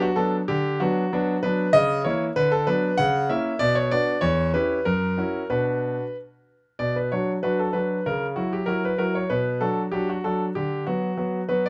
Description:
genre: classical-period piano sonatina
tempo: 96 BPM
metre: 2/4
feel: straight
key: B minor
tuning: A4 = 440 Hz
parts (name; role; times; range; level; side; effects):
- clear concert grand piano; solo; 0.0-11.7 s; E2 to F#5; -24 LUFS; equal; none
room: moderate stone room reverb, RT60 1.0 s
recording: none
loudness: -24 LUFS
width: mono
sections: 0.0-6.8 A section; 6.8-11.7 A section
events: none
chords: 0.5 Bm/D; 1.7 A#dim/C#; 2.4 Bm/D; 3.0 A#dim/C#; 3.6 Bm; 4.2 C#dim/E; 4.9 F#7; 5.5 Bm; 8.1 F#5/C#; 9.3 Bm; 10.6 Bm/D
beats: | 0.48 1.10 | 1.73 2.35 | 2.97 3.60 | 4.22 4.86 | 5.50 6.15 | 6.80 7.44 | 8.06 8.69 | 9.31 9.94 | 10.55 11.17

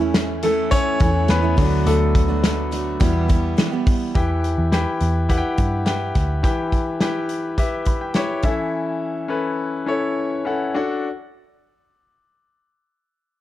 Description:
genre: piano-driven pop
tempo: 105 BPM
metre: 4/4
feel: straight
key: E dorian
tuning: A4 = 440 Hz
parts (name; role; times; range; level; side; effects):
- bright concert grand piano; accompaniment; 0.0-11.1 s; E3 to B5; -22 LUFS; left 3 dB; none
- picked steel-string acoustic guitar; riff; 0.0-4.2 s; E2 to G4; -24 LUFS; right 9 dB; none
- vintage muted picked electric bass; bass; 0.0-6.4 s; D2 to G2; -21 LUFS; equal; none
- loose indie drum kit; drums; 0.1-8.6 s; hi-hat, kick drum, snare drum; -20 LUFS; equal; none
room: studio ambience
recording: dark, warm production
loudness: -18 LUFS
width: side -14 dB against mid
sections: 0.0-4.1 A section; 4.1-13.4 B section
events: grand piano solo 0.0-4.1; grand piano fill 7.6-8.7; slowing down 8.7-13.4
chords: 0.0 A/E; 1.6 D; 3.0 Em; 8.4 A/E; 10.8 D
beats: 0.15 0.72 1.29 | 1.86 2.44 3.01 3.58 | 4.15 4.72 5.29 5.86 | 6.43 7.01 7.58 8.15 | 8.72 9.29 9.87 10.46 | 11.05

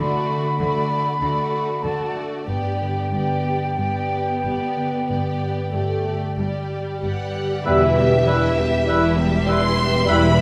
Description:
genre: classical, slow romantic movement for symphony orchestra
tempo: 46-52 BPM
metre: 4/4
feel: rubato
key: G major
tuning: A4 = 440 Hz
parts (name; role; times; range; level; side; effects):
- warm studio violin section; melody; 0.0-10.4 s; D5 to C6; -32 LUFS; equal; none
- concert flute; second line; 0.0-10.2 s; G5 to E6; -29 LUFS; equal; none
- warm studio violin section; second line; 0.0-10.4 s; E4 to E5; -31 LUFS; equal; none
- warm studio viola section; accompaniment; 0.0-10.4 s; E3 to E4; -29 LUFS; equal; none
- concert harp; arpeggios; 0.0-10.4 s; E2 to G5; -29 LUFS; equal; none
- warm studio cello section; bass; 0.0-10.4 s; E2 to D3; -29 LUFS; equal; none
- warm studio double bass section; bass; 0.0-10.4 s; E1 to D2; -29 LUFS; equal; none
- bright trombone section; sustained chords; 7.6-10.4 s; B2 to G3; -27 LUFS; equal; none
- warm oboe; second line; 7.7-10.2 s; B4; -31 LUFS; equal; none
- warm bassoon; accompaniment; 7.7-10.2 s; G3; -30 LUFS; equal; none
- mellow French horn section; sustained chords; 7.7-10.4 s; B3 to G4; -28 LUFS; equal; none
- mellow trumpet section; stabs; 7.7-10.4 s; E5; -25 LUFS; equal; none
room: wet recital hall reverb, RT60 1.2 s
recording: recorded in a church or concert hall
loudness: -21 LUFS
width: mono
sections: 0.0-7.7 A section; 7.7-10.4 B section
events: none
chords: 0.0 D; 2.5 G; 7.7 Em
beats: 0.00 1.21 | 2.48 3.79 5.10 6.38 | 7.67 8.88 10.07

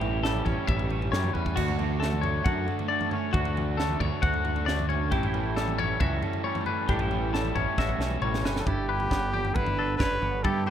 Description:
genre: math rock and midwest emo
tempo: 135 BPM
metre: 4/4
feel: straight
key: D major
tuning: A4 = 439 Hz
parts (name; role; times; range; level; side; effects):
- twangy electric guitar; accompaniment; 0.0-10.7 s; D2 to F#4; -33 LUFS; right 10 dB; analog chorus
- twangy electric guitar; arpeggios; 0.0-10.7 s; E4 to F#5; -31 LUFS; left 8 dB; spring reverb, tape echo
- crunchy overdriven guitar; riff; 0.0-8.7 s; A2 to A4; -34 LUFS; equal; none
- growling fingered electric bass; bass; 0.0-10.7 s; G1 to G2; -30 LUFS; equal; overdrive
- crisp fusion drum kit; drums; 0.0-10.6 s; crash cymbal, kick drum, snare drum, toms; -31 LUFS; equal; none
- warm trumpet; melody; 8.6-10.7 s; G4 to B4; -30 LUFS; right 1 dB; none
room: studio ambience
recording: rough home demo mix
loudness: -24 LUFS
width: side -10 dB against mid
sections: 0.0-8.7 A section; 8.7-10.7 B section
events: drum fill 1.3, 7.8-8.7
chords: 0.0 A7; 1.6 Dmaj7; 5.1 A7; 8.7 G69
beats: 0.24 0.69 1.13 | 1.57 2.01 2.46 2.90 | 3.34 3.78 4.23 4.67 | 5.11 5.56 6.00 6.45 | 6.89 7.33 7.78 8.22 | 8.67 9.12 9.56 10.01 | 10.46

